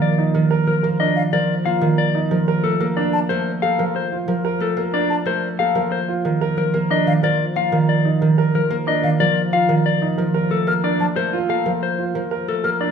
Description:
classical, minimalist pattern music; 183 BPM; 6/4; straight; Bb major; A4 = 443 Hz
mellow electric guitar; melody; 0.0-12.9 s; A4 to F5; -22 LUFS; left 8 dB
concert harp; accompaniment; 0.0-12.9 s; Eb3 to Bb3; -20 LUFS; right 2 dB
warm grand piano; arpeggios; 0.0-12.9 s; D4 to Bb4; -24 LUFS; right 6 dB
mellow silver concert flute; arpeggios; 1.2-12.7 s; F5 to F6; -26 LUFS; left 5 dB
wet recital hall reverb, RT60 1.6 s; minimal, uncompressed stereo recording; -17 LUFS; side -7 dB against mid
0.0-12.9 A section
0.0 F7sus4; 2.3 Bbmaj7(no3); 6.2 F7sus4; 10.2 Bbmaj7(no3)
0.02 | 0.35 0.67 1.00 1.33 1.66 1.99 | 2.31 2.64 2.97 3.30 3.62 3.95 | 4.28 4.61 4.94 5.26 5.59 5.92 | 6.25 6.58 6.90 7.23 7.56 7.89 | 8.21 8.54 8.87 9.20 9.53 9.85 | 10.18 10.51 10.84 11.16 11.49 11.82 | 12.15 12.48 12.80

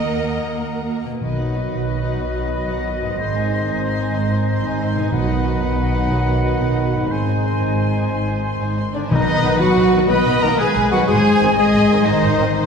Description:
cinematic, heroic adventure film score; 122 BPM (dotted quarters); 12/8; straight; B major; A4 = 439 Hz
warm symphonic violin section; melody; 0.0-12.7 s; D4 to B#5; -30 LUFS; left 4 dB
warm symphonic violin section; second line; 0.0-12.7 s; B4 to B5; -29 LUFS; left 3 dB
warm symphonic viola section; accompaniment; 0.0-12.7 s; B#3 to D#5; -27 LUFS; equal
concert harp; arpeggios; 0.0-12.7 s; G#2 to D#6; -29 LUFS; left 5 dB
dark symphonic cello section; bass; 0.0-12.7 s; G#2 to B3; -24 LUFS; right 2 dB
dark symphonic double bass section; bass; 0.0-12.6 s; G#1 to D#2; -25 LUFS; right 1 dB
clear clarinet; second line; 1.2-12.7 s; D4 to B4; -27 LUFS; left 1 dB
clear oboe; second line; 1.2-8.9 s; B4 to B#4; -29 LUFS; right 2 dB
concert flute; second line; 1.2-12.6 s; D5 to B5; -26 LUFS; left 1 dB
dark French horn section; sustained chords; 1.2-12.7 s; D3 to D#4; -23 LUFS; left 1 dB
warm trombone section; sustained chords; 1.2-12.4 s; D#3 to B#3; -27 LUFS; right 3 dB
timpani; percussion; 1.2-1.7, 5.1-5.6, 9.1-9.6 s; B2; -25 LUFS; left 1 dB
warm trumpet; stabs; 8.9-12.7 s; D4 to B4; -24 LUFS; left 1 dB
wet scoring stage reverb, RT60 1.6 s; heard from further back in the room; -16 LUFS; side -6 dB against mid
0.0-1.2 A section; 1.2-9.1 B section; 9.1-12.7 C section
0.0 D#m; 1.2 B; 3.2 G#; 5.1 B; 7.1 G#; 9.1 B; 11.1 G#
0.21 0.72 | 1.23 1.72 2.21 2.71 | 3.19 3.68 4.16 4.64 | 5.13 5.62 6.11 6.60 | 7.10 7.60 8.11 8.61 | 9.11 9.61 10.10 10.59 | 11.08 11.57 12.06 12.55

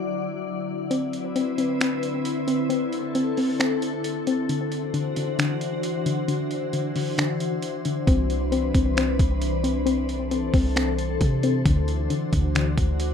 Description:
hip hop, atmospheric cloud-rap; 134 BPM; 4/4; half-time; C lydian; A4 = 440 Hz
glassy FM pad; sustained chords; 0.0-13.1 s; D3 to D5; -27 LUFS; left 1 dB; ensemble chorus, built-in reverb, sidechain pumping
soft round pluck; arpeggios; 0.9-13.1 s; D3 to C4; -26 LUFS; left 3 dB; chorus, tape echo
trip hop sampler-style drum kit; drums; 0.9-13.1 s; finger snaps, hi-hat, kick drum; -27 LUFS; equal
warm 808-style bass; bass; 8.1-13.1 s; C2 to C3; -25 LUFS; equal
little or no reverb; rough home demo mix; -22 LUFS; side -7 dB against mid
0.9-13.1 A section
kick muted 0.9-8.1
0.0 Dadd9; 0.9 Cmaj9; 4.5 D9; 8.1 Cmaj9; 11.7 D9
0.01 0.46 | 0.91 1.36 1.80 2.25 | 2.70 3.15 3.60 4.04 | 4.49 4.94 5.39 5.83 | 6.28 6.73 7.18 7.63 | 8.07 8.52 8.97 9.42 | 9.87 10.31 10.76 11.21 | 11.66 12.10 12.55 13.00

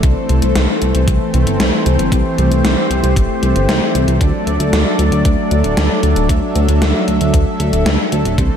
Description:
synthwave; 115 BPM; 4/4; straight; A4 = 440 Hz
soft supersaw; sustained chords; 0.0-8.6 s; E3 to E5; -16 LUFS; equal; sidechain pumping
chorused synth bass; bass; 0.0-8.5 s; D1 to D2; -15 LUFS; equal
electronic kick drum; drums; 0.0-8.5 s; -16 LUFS; equal; overdrive
gated 80s digital drum machine; drums; 0.0-8.5 s; hi-hat, snare drum; -20 LUFS; left 1 dB; gated reverb, gated reverb snare, overdrive
moderate lush hall reverb, RT60 2.3 s; dreamy mix soaked in reverb; -12 LUFS; side -8 dB against mid
0.0-8.6 A section
0.0 Am; 4.2 D
| 0.04 0.56 1.08 1.60 | 2.12 2.64 3.17 3.69 | 4.21 4.73 5.25 5.77 | 6.30 6.82 7.34 7.86 | 8.38

